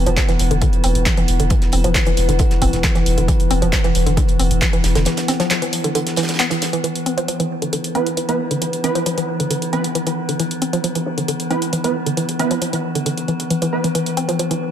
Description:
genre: driving peak-time techno.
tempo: 135 BPM.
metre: 4/4.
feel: straight.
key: unclear.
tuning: A4 = 443 Hz.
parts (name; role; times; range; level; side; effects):
saturated sub bass; bass; 0.0-5.1 s; E1; -18 LUFS; equal; overdrive, sidechain pumping, low-pass filter.
metallic inharmonic drone; drone; 0.0-14.7 s; E3 to B3; -23 LUFS; left 1 dB; chorus, built-in reverb, sidechain pumping.
woody wave-folded pluck; riff; 0.1-14.6 s; D3 to C4; -22 LUFS; equal; chorus, tube saturation, sidechain pumping, tape echo.
punchy analog drum machine; drums; 0.1-14.6 s; handclaps, hi-hat; -24 LUFS; equal; sidechain pumping on hats.
damped 70s drum kit; drums; 0.2-14.7 s; hi-hat, snare drum; -32 LUFS; right 2 dB; none.
electronic kick drum; drums; 0.2-4.7 s; none; -18 LUFS; equal; none.
rave stab; stabs; 7.9-13.9 s; E3 to B4; -24 LUFS; right 5 dB; chorus, built-in reverb, sidechain pumping, tape echo.
room: light reverb.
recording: none.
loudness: -16 LUFS.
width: side -10 dB against mid.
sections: 0.0-6.8 A section; 6.8-14.7 B section.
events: break 5.1-6.8.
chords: 0.0 E5.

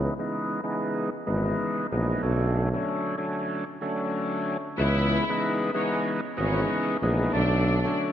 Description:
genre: hip hop.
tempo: 94 BPM.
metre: 4/4.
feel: swing 59% on 16ths.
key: C# phrygian.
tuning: A4 = 440 Hz.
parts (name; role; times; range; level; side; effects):
overdriven tonewheel organ; accompaniment; 0.0-8.1 s; C#2 to E4; -27 LUFS; equal; slow rotary speaker, cassette tape, high-pass filter, low-pass filter.
warm tuba; bass; 0.0-7.8 s; G#1 to C#2; -26 LUFS; equal; none.
warm studio violin section; melody; 4.8-7.9 s; C#4 to E5; -30 LUFS; left 2 dB; high-pass filter, low-pass filter, tape echo.
room: moderate concert hall reverb, RT60 2.1 s.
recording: dark, warm production.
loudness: -24 LUFS.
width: side -10 dB against mid.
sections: 0.0-4.8 A section; 4.8-8.1 B section.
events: filter sweep on tonewheel organ 0.0-4.8; break 3.5-4.8.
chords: 0.0 C#m9; 2.2 Bm9; 4.8 C#m9; 7.3 Bm9.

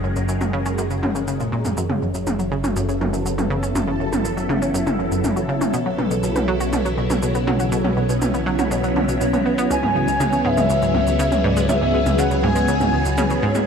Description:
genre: ambient, sequencer-driven space music.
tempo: 121 BPM.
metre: 4/4.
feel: straight.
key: F# minor.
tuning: A4 = 442 Hz.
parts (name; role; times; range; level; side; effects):
phased string machine; sustained chords; 0.0-13.7 s; C#3 to A#4; -22 LUFS; equal; ensemble chorus, phaser.
analog pluck; riff; 0.0-13.6 s; C#2 to F#4; -23 LUFS; equal; chorus, tape echo.
fat analog bass; bass; 0.0-13.6 s; F#1 to C#2; -26 LUFS; equal; none.
electronic shaker and toms; percussion; 0.2-13.6 s; none; -26 LUFS; right 1 dB; tape echo.
pulsing gated texture; texture; 1.8-13.7 s; C#5; -31 LUFS; right 3 dB; chorus, built-in reverb.
expressive synth lead; melody; 9.7-13.4 s; D5 to G#5; -22 LUFS; left 1 dB; analog chorus, tape echo.
room: moderate plate reverb, RT60 2.8 s.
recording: none.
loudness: -18 LUFS.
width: side -6 dB against mid.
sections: 0.0-1.8 A section; 1.8-13.7 B section.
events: none.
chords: 0.0 F#add9; 1.8 F#m7; 5.7 B7(no3); 9.7 C#m.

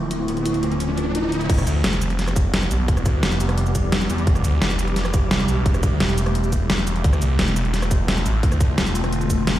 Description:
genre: dark technical drum and bass.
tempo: 173 BPM.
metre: 4/4.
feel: straight.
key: E phrygian.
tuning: A4 = 439 Hz.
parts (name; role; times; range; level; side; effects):
swarming drone; sustained chords; 0.0-9.6 s; D3 to G4; -27 LUFS; equal; built-in reverb, sidechain pumping.
phased detuned saw bass; bass; 0.0-9.6 s; D1 to E2; -21 LUFS; equal; phaser, overdrive.
riser; sound effects; 0.0-1.5 s; none; -29 LUFS; equal; none.
dark detuned synth bell; arpeggios; 0.1-1.3 s; E4 to F4; -27 LUFS; equal; chorus, phaser, sidechain pumping, digital delay.
dubstep drum kit; drums; 0.1-9.6 s; cabasa, crash cymbal, hi-hat, rim click, snare drum; -24 LUFS; equal; overdrive, studio reverb.
electronic kick drum; drums; 1.5-9.4 s; none; -19 LUFS; equal; studio reverb.
room: light reverb, digital ambience.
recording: played on a big sound system in a bare room, stone room reverb.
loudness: -18 LUFS.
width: side -13 dB against mid.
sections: 0.0-1.5 A section; 1.5-9.6 B section.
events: riser 0.0-1.5; drop 1.5-9.6.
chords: 0.0 Dm7; 1.5 Em; 7.0 Dm7.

